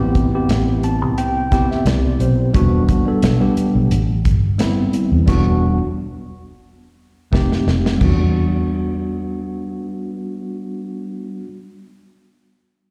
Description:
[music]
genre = straight-eighth soul blues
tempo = 88 BPM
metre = 4/4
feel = swing 54% on 16ths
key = E minor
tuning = A4 = 438 Hz
[part]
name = mellow tine electric piano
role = accompaniment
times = 0.0-11.5 s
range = G3 to A5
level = -22 LUFS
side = equal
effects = slapback echo
[part]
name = vintage muted fingered electric bass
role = bass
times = 0.0-11.4 s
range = E1 to E2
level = -20 LUFS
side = equal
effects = none
[part]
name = warm soul drum kit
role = drums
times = 0.1-8.2 s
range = crash cymbal, hi-hat, kick drum, snare drum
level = -22 LUFS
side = equal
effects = none
[sound]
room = light reverb, small room ambience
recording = live gig heard through the venue's PA, recital hall reverb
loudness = -18 LUFS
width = mono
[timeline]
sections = 0.0-8.0 A section; 8.0-10.7 B section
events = tine electric piano fill 0.5-2.5; stop 5.3-7.3; drum fill 7.3-8.0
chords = 0.0 Am7; 2.5 Em7; 3.9 Am7; 5.3 Em7; 7.3 F7; 8.0 Em7

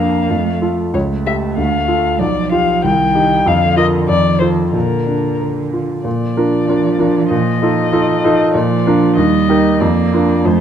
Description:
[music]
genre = quick classical-period movement for piano trio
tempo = 95 BPM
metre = 2/4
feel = rubato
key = Bb major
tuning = A4 = 440 Hz
[part]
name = muted violin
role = melody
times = 0.0-10.6 s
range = Bb4 to G5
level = -19 LUFS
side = left 5 dB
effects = none
[part]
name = muted cello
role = second line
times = 0.0-10.6 s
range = D3 to Bb3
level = -20 LUFS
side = right 10 dB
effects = none
[part]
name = clear grand piano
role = accompaniment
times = 0.0-10.6 s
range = B1 to Bb4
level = -14 LUFS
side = equal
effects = none
[sound]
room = moderate recital hall reverb, RT60 1.4 s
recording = close, detailed microphones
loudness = -12 LUFS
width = side -9 dB against mid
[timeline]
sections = 0.0-6.1 A section; 6.1-10.6 B section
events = none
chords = 0.3 F; 0.9 A7/C#; 1.6 Dm; 2.2 G7/B; 2.8 Cm; 3.5 Bb/F; 4.1 F7; 4.7 Bb; 7.3 F7/Bb; 8.5 Bb; 9.2 Eb; 9.8 Bb/F

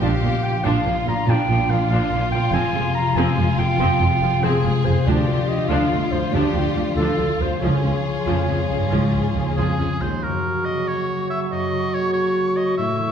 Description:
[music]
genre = cinematic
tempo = 94 BPM (dotted quarters)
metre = 12/8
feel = straight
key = unclear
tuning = A4 = 440 Hz
[part]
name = warm symphonic violin section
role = melody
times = 0.0-10.0 s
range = F4 to Ab4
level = -29 LUFS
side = left 4 dB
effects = none
[part]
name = mellow clarinet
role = second line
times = 0.0-13.1 s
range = E4 to Bb5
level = -26 LUFS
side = equal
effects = none
[part]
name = rich studio violin section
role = second line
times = 0.0-9.9 s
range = D4 to Ab4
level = -30 LUFS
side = equal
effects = none
[part]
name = warm symphonic viola section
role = accompaniment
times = 0.0-10.1 s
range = F3 to F4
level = -26 LUFS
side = right 2 dB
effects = none
[part]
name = concert harp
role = arpeggios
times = 0.0-13.1 s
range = F2 to F5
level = -25 LUFS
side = left 5 dB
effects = none
[part]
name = rich symphonic cello section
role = bass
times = 0.0-10.2 s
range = Db2 to Bb2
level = -26 LUFS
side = right 2 dB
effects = none
[part]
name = warm symphonic double bass section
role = bass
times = 0.0-10.1 s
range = F1 to D2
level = -24 LUFS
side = right 2 dB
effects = none
[part]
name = clear oboe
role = second line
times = 9.6-13.1 s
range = Ab4 to E5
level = -26 LUFS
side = right 1 dB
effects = none
[part]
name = silver concert flute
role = second line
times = 10.2-13.1 s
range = C#6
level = -30 LUFS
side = equal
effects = none
[part]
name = clear trombone section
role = sustained chords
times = 10.2-13.1 s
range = A2 to F#3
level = -23 LUFS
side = right 2 dB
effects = none
[sound]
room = wet recital hall reverb, RT60 1.6 s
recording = heard from further back in the room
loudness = -18 LUFS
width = side -8 dB against mid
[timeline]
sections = 0.0-10.2 A section; 10.2-13.1 B section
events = none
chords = 0.0 Bb; 2.5 Fm; 5.1 Dm; 7.6 Db; 10.2 F#

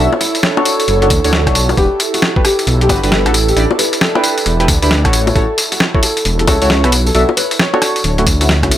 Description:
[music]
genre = UK garage, two-step garage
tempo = 134 BPM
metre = 4/4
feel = swing 63% on 16ths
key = unclear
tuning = A4 = 440 Hz
[part]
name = nylon-string guitar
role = melody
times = 0.0-7.8 s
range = D4 to C#5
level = -20 LUFS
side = left 2 dB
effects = none
[part]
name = deep mellow chord stab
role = stabs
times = 0.0-8.8 s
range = A3 to E5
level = -18 LUFS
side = equal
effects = chorus, tape echo
[part]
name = dark detuned saw bass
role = bass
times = 0.0-8.8 s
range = D1 to D2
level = -14 LUFS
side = equal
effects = none
[part]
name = ethereal airy pad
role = texture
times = 0.0-8.8 s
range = E4 to D5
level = -22 LUFS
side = right 5 dB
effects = ensemble chorus, built-in reverb, sidechain pumping
[part]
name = boom bap sampler-style drum kit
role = drums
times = 0.1-8.8 s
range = bongos, hi-hat, rim click, snare drum, tambourine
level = -15 LUFS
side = left 1 dB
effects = small room ambience
[part]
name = electronic kick drum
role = drums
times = 1.1-8.7 s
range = none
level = -16 LUFS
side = equal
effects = small room ambience
[sound]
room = light reverb, digital ambience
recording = none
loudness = -10 LUFS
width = side -12 dB against mid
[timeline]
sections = 0.0-8.8 A section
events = none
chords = 0.0 Bm9; 1.8 Em9; 3.3 A7sus4; 5.1 F#m7/A; 6.9 Bm9; 8.0 Dmaj7

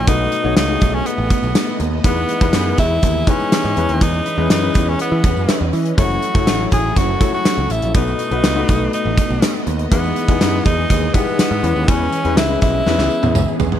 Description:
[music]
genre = 1980s-style pop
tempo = 122 BPM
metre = 4/4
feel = straight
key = unclear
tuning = A4 = 438 Hz
[part]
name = edgy tenor saxophone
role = melody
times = 0.0-13.6 s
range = B3 to G#4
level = -21 LUFS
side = equal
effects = tape echo
[part]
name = warm grand piano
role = accompaniment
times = 0.0-13.8 s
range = B2 to C#5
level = -23 LUFS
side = left 8 dB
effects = none
[part]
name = string machine, violas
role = sustained chords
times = 0.0-13.8 s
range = E3 to D#5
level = -24 LUFS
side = right 1 dB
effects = ensemble chorus
[part]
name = modern bright picked electric bass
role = bass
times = 0.0-13.8 s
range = F#1 to E3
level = -20 LUFS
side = right 1 dB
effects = none
[part]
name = gated 80s drum kit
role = drums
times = 0.1-13.8 s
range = hi-hat, kick drum, snare drum, tambourine, toms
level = -17 LUFS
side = equal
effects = none
[part]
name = tambourine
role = percussion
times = 0.1-13.7 s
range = none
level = -39 LUFS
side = right 23 dB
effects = none
[sound]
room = light reverb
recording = none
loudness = -14 LUFS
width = side -10 dB against mid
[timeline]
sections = 0.0-13.8 A section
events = drum fill 12.9-13.8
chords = 0.1 B7; 2.0 Emaj7; 3.8 C#m7; 6.0 F#m7; 7.9 B7; 9.9 Emaj7; 11.6 C#m7; 12.9 E6

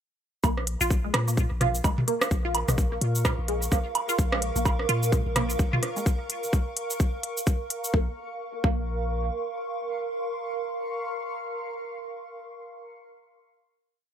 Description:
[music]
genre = minimal techno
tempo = 128 BPM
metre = 4/4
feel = swing 59% on 16ths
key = Bb minor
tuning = A4 = 440 Hz
[part]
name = resonant blip pluck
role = riff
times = 0.4-8.8 s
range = Ab3 to F4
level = -31 LUFS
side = right 1 dB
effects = phaser, wide subtle chorus, sidechain pumping, digital delay
[part]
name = punchy sub bass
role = bass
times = 0.4-9.3 s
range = Bb1 to Bb2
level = -29 LUFS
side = equal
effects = sidechain pumping
[part]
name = electronic kick drum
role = drums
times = 0.4-8.8 s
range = none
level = -24 LUFS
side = equal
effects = overdrive
[part]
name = electronic shaker and hi-hat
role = drums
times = 0.4-7.9 s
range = none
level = -32 LUFS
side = left 1 dB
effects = none
[part]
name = booming analog drum machine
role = percussion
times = 0.4-5.9 s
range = rim click, toms, woodblock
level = -28 LUFS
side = right 1 dB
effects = overdrive
[part]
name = granular cloud pad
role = texture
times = 1.8-11.8 s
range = Bb4 to Db6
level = -32 LUFS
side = right 2 dB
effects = built-in reverb, sidechain pumping
[sound]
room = light reverb, digital ambience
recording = none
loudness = -24 LUFS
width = side -9 dB against mid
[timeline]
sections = 0.4-7.9 groove; 7.9-11.7 final chord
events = none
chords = 0.4 Bbm

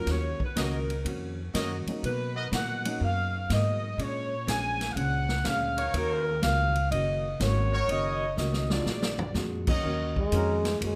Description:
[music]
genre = jazz, big band swing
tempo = 123 BPM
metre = 4/4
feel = swing 67% on 8ths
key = Eb minor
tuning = A4 = 439 Hz
[part]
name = bright saxophone section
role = melody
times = 0.0-9.4 s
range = Bb4 to Ab5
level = -33 LUFS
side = equal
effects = none
[part]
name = warm concert grand piano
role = accompaniment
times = 0.0-3.0, 8.7-9.8 s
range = Eb2 to F4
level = -38 LUFS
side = equal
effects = none
[part]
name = upright bass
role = bass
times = 0.0-11.0 s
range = Gb1 to B2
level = -33 LUFS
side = equal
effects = none
[part]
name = archtop guitar, miked and amplified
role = accompaniment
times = 0.1-11.0 s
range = Bb2 to Gb4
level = -39 LUFS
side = equal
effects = none
[part]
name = swinging big-band drum kit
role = drums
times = 0.1-11.0 s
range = crash cymbal, hi-hat, kick drum, ride cymbal, snare drum, toms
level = -36 LUFS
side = equal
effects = none
[part]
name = clear trumpet section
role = stabs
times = 0.6-2.5, 5.8-10.3 s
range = Eb4 to D#5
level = -36 LUFS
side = equal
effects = none
[part]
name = warm trombone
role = melody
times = 10.2-11.0 s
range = Ab3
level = -30 LUFS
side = equal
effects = none
[part]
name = clear trombone section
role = sustained chords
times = 10.3-10.6 s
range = Gb3 to Bb4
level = -40 LUFS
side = equal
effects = none
[sound]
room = moderate large studio reverb, RT60 1.4 s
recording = none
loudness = -28 LUFS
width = mono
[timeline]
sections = 0.0-9.8 A section; 9.8-11.0 B section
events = drum fill 8.4-9.4; trombone solo 9.8-11.0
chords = 0.0 Ebm7; 2.0 Bmaj7; 4.0 Bb7#9; 5.9 Ebm7; 8.9 Bb7b13; 9.8 Ebm7

